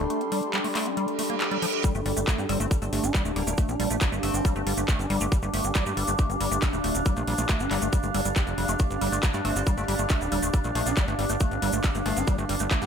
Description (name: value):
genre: psychedelic trance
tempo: 138 BPM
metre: 4/4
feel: straight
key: unclear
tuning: A4 = 440 Hz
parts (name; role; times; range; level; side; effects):
- overtone-sweeping drone; sustained chords; 0.0-12.9 s; G3 to A4; -32 LUFS; equal; chorus, built-in reverb, sidechain pumping
- liquid acid bass; riff; 0.0-12.9 s; F3 to G4; -31 LUFS; moving between left 3 dB and right 3 dB; phaser, auto-pan, sidechain pumping, tape echo
- plucky analog bass; bass; 0.0-12.9 s; D1 to G2; -29 LUFS; equal; none
- ethereal airy pad; texture; 0.0-12.9 s; D4 to C6; -33 LUFS; equal; ensemble chorus, built-in reverb, sidechain pumping
- garage drum kit; drums; 0.1-12.9 s; handclaps, hi-hat; -32 LUFS; left 1 dB; small room ambience
- reverse cymbal and zap; sound effects; 1.1-1.8, 12.1-12.2 s; none; -34 LUFS; right 6 dB; none
- electronic kick drum; drums; 1.8-12.8 s; none; -24 LUFS; equal; small room ambience
- tube shaker; percussion; 1.8-12.9 s; none; -35 LUFS; right 3 dB; none
- metallic wobble bass; second line; 2.5-4.7, 9.4-12.5 s; F3 to C4; -40 LUFS; left 2 dB; lush chorus, sidechain pumping, high-pass filter, tape echo
room: light reverb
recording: none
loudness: -23 LUFS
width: side -7 dB against mid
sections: 0.0-12.9 A section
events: reverse cymbal 1.1-1.8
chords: 0.0 G5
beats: | 0.10 0.54 0.97 1.41 | 1.84 2.27 2.71 3.15 | 3.58 4.01 4.45 4.88 | 5.32 5.75 6.19 6.62 | 7.06 7.49 7.93 8.36 | 8.80 9.23 9.67 10.10 | 10.54 10.97 11.41 11.84 | 12.28 12.71